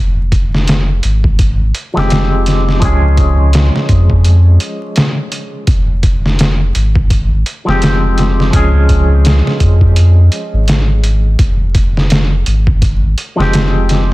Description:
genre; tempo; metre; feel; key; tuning
trip hop; 84 BPM; 4/4; swing 58% on 16ths; F minor; A4 = 441 Hz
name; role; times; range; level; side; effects
warm sub bass; bass; 0.0-14.1 s; F1 to F2; -11 LUFS; equal; none
trip hop sampler-style drum kit; drums; 0.3-14.1 s; hi-hat, kick drum, snare drum; -13 LUFS; equal; overdrive, studio reverb
electric guitar with an envelope filter; accompaniment; 1.9-14.1 s; F3 to Ab4; -17 LUFS; equal; tremolo, vintage 12-bit sampler grit, low-pass filter, tape echo
room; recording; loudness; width
little or no reverb; dense, heavily limited modern master, vinyl crackle; -9 LUFS; side -19 dB against mid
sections
0.0-14.1 A section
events
none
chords
0.0 Fmadd9; 2.8 Db; 5.7 Fmadd9; 8.5 Db; 11.4 Fmadd9

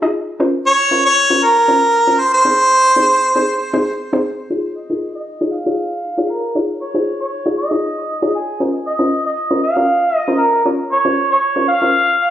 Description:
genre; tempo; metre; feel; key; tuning
pop; 117 BPM; 4/4; straight; Db major; A4 = 440 Hz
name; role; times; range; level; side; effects
soft round pluck; accompaniment; 0.0-12.1 s; C4 to Eb5; -19 LUFS; left 1 dB; chorus, low-pass filter
warm harmonica; melody; 0.7-12.3 s; Ab4 to F5; -14 LUFS; right 1 dB; low-pass filter, digital delay
room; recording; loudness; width
moderate echo chamber reverb, RT60 1.6 s; recorded on a phone in the room, studio reverb, compression; -13 LUFS; side -11 dB against mid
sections
0.0-4.5 A section; 4.5-12.3 B section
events
build-up 4.5-12.3; filter sweep 4.5-12.3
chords
0.4 Bbmadd9; 2.5 Ab; 4.5 Dbadd9; 8.6 Bbmadd9

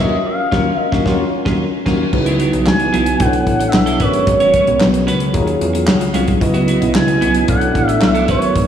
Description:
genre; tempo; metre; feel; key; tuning
early-eighties boogie funk; 112 BPM; 4/4; straight; unclear; A4 = 444 Hz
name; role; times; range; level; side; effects
expressive portamento lead; melody; 0.0-8.7 s; C#5 to G#5; -18 LUFS; right 1 dB; chorus, diffuse ambient delay
tine electric piano; accompaniment; 0.0-8.7 s; C#4 to B5; -20 LUFS; left 1 dB; fast stereo tremolo
clean electric guitar; riff; 0.0-8.6 s; F#3 to C#5; -24 LUFS; right 3 dB; wide subtle chorus
plucky analog bass; bass; 0.0-8.7 s; G#1 to E2; -19 LUFS; right 1 dB; none
damped 70s drum kit; drums; 0.5-8.7 s; crash cymbal, handclaps, hi-hat, kick drum, snare drum; -19 LUFS; equal; none
chorused pulse-width pad; sustained chords; 2.1-8.7 s; C#3 to E#5; -20 LUFS; equal; none
room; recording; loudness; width
wet lush hall reverb, RT60 1.9 s, small room ambience; dreamy mix soaked in reverb, small room reverb; -12 LUFS; side -9 dB against mid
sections
0.0-2.1 A section; 2.1-8.7 B section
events
band accent 0.0-2.1; tine electric piano fill 4.8-6.4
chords
0.0 D#m9; 2.1 C#m11; 3.2 Bm11; 4.0 G#m11; 5.3 D#m11; 6.4 C#m11; 7.5 Bm11

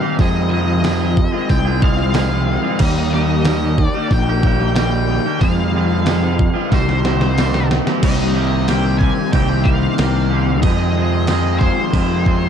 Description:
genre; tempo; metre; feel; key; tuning
rock, shoegaze and dream pop; 92 BPM; 4/4; straight; C minor; A4 = 440 Hz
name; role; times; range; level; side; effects
octave-fuzz lead guitar; melody; 0.0-12.5 s; C5 to Ab5; -25 LUFS; left 4 dB; distortion, analog delay
overdriven semi-hollow guitar; riff; 0.0-12.5 s; C3 to G4; -21 LUFS; left 14 dB; analog chorus
twangy electric guitar; riff; 0.0-12.5 s; F2 to Ab4; -21 LUFS; right 13 dB; reverse reverb
fuzz fingered electric bass; bass; 0.2-12.5 s; Bb1 to F2; -18 LUFS; equal; overdrive
detuned 8-bit digital drum machine; drums; 0.2-12.4 s; crash cymbal, hi-hat, kick drum, snare drum; -19 LUFS; equal; none
room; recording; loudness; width
little or no reverb; dark, warm production; -14 LUFS; side -8 dB against mid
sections
0.0-8.0 A section; 8.0-12.5 B section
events
drum fill 6.7-8.0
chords
0.2 Fm7; 2.8 Eb; 5.4 Fm7; 6.7 Cm7; 10.6 Fm7

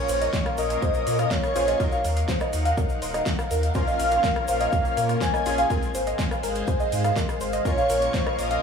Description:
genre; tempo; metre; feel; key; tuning
progressive house; 123 BPM; 4/4; straight; Bb minor; A4 = 440 Hz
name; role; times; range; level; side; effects
warm velvety synth lead; melody; 0.0-8.6 s; Db5 to Ab5; -28 LUFS; right 1 dB; chorus, vintage 12-bit sampler grit, sidechain pumping, dub echo
airy dreamy lead; second line; 0.0-8.6 s; Db5 to Ab5; -33 LUFS; left 1 dB; chorus, sidechain pumping, dub echo
lush unison pad; sustained chords; 0.0-8.6 s; Ab3 to Gb5; -32 LUFS; left 1 dB; chorus, phaser, sidechain pumping
supersaw stab; stabs; 0.0-8.6 s; Ab2 to Bb4; -34 LUFS; left 4 dB; vintage 12-bit sampler grit, sidechain pumping, dub echo
soft round pluck; arpeggios; 0.1-8.6 s; Bb4 to F5; -28 LUFS; equal; chorus, sidechain pumping, dub echo
saturated sub bass; bass; 0.1-8.6 s; Eb1 to Bb2; -28 LUFS; equal; sidechain pumping
pop drum kit; drums; 0.1-8.6 s; hi-hat, rim click, snare drum; -32 LUFS; equal; none
egg shaker; percussion; 0.1-8.6 s; none; -42 LUFS; left 3 dB; none
electronic kick drum; drums; 0.3-8.2 s; none; -28 LUFS; equal; none
room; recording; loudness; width
light reverb; none; -21 LUFS; side -6 dB against mid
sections
0.0-8.6 A section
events
none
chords
0.0 Bbm; 1.8 Ebmadd9; 3.8 Bbm; 5.7 Fm/Ab; 7.7 Bbm

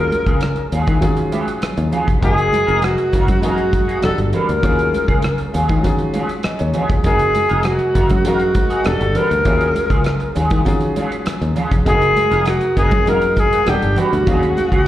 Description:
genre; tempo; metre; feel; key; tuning
lush 1970s-style soul; 100 BPM; 4/4; straight; unclear; A4 = 443 Hz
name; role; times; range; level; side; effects
breathy alto saxophone; melody; 0.0-14.9 s; F#4 to A#4; -17 LUFS; left 1 dB; plate reverb, slapback echo
clear concert grand piano; accompaniment; 0.0-14.9 s; F#3 to F#5; -23 LUFS; left 1 dB; plate reverb, slapback echo
fingered electric bass; bass; 0.0-14.9 s; E1 to D#3; -20 LUFS; equal; none
electric guitar through a small old amp; riff; 0.1-14.8 s; F#3 to B4; -25 LUFS; right 2 dB; wah, lush chorus, slapback echo
modern studio drum kit; drums; 0.1-14.9 s; hi-hat, kick drum, rim click; -20 LUFS; equal; none
congas; percussion; 0.1-14.7 s; none; -27 LUFS; right 4 dB; none
room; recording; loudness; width
light reverb; live gig heard through the venue's PA, recital hall reverb; -14 LUFS; side -13 dB against mid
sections
0.0-14.9 A section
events
none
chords
0.0 D#m11; 2.2 F#69; 4.0 Em11; 4.6 D#m11; 7.0 F#69; 8.9 Em11; 9.5 D#m11; 11.9 F#69; 13.7 Em11; 14.3 D#m11

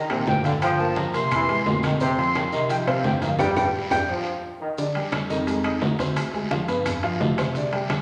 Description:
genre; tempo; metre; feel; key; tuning
latin, salsa; 173 BPM; 4/4; straight; unclear; A4 = 440 Hz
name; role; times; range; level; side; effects
dark upright piano; accompaniment; 0.0-8.0 s; Bb2 to Eb6; -30 LUFS; equal; none
mellow bass clarinet; bass; 0.0-8.0 s; D2 to Eb3; -33 LUFS; equal; none
mellow trombone section; second line; 0.1-4.7 s; C3 to G3; -30 LUFS; equal; none
claves; percussion; 0.1-8.0 s; none; -42 LUFS; equal; none
congas; percussion; 0.1-8.0 s; none; -32 LUFS; equal; none
maracas; percussion; 0.1-8.0 s; none; -46 LUFS; equal; none
timbales; percussion; 0.1-8.0 s; none; -32 LUFS; equal; none
breathy bright concert flute; melody; 0.3-4.0 s; F5 to C6; -28 LUFS; equal; none
bongos; percussion; 0.3-8.0 s; none; -39 LUFS; equal; none
guiro; percussion; 0.3-8.0 s; none; -40 LUFS; equal; none
room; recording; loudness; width
wet large studio reverb, RT60 1.3 s; none; -23 LUFS; mono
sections
0.0-4.8 A section; 4.8-8.0 B section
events
band accent 3.4-4.8; drum fill 3.7-4.8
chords
0.0 Ebmaj7; 0.6 Gm7; 1.3 C7b13; 2.0 Fsus2; 3.4 G5; 4.8 Ebmaj9; 5.5 Fm7; 6.2 Dm7b5; 6.9 G7

